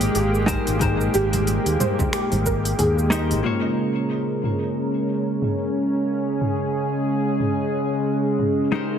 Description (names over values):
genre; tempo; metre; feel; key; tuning
sunset chillout; 91 BPM; 4/4; swing 58% on 16ths; Bb dorian; A4 = 441 Hz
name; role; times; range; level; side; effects
hollow-body jazz guitar; accompaniment; 0.0-9.0 s; Ab3 to Db5; -26 LUFS; moving between left 5 dB and right 4 dB; auto-pan, digital delay
lush unison pad; sustained chords; 0.0-9.0 s; Bb2 to Bb4; -22 LUFS; right 1 dB; chorus
soft round pluck; arpeggios; 0.0-3.4 s; G4 to Eb5; -27 LUFS; right 1 dB; ensemble chorus, digital delay
fingered electric bass; bass; 0.0-3.4 s; Ab1 to Eb2; -23 LUFS; equal; none
deep house drum kit; drums; 0.0-8.5 s; finger snaps, hi-hat, shaker, toms; -28 LUFS; equal; low-pass filter on hats, low-pass filter on toms, low-pass filter on perc, low-pass filter on snare
electronic kick drum; drums; 0.5-2.6 s; none; -27 LUFS; equal; none
congas; percussion; 0.5-3.3 s; none; -31 LUFS; right 3 dB; none
room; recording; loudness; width
wet plate reverb, RT60 1.7 s, digital ambience; heavily compressed radio sound; -20 LUFS; side -8 dB against mid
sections
0.0-3.4 A section; 3.4-9.0 B section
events
filter sweep on analog synth pad 3.4-9.0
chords
0.0 Abmaj9; 3.4 Bbm9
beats
0.15 | 0.81 1.47 2.13 2.79 | 3.45 4.11 4.77 5.43 | 6.09 6.75 7.41 8.06 | 8.72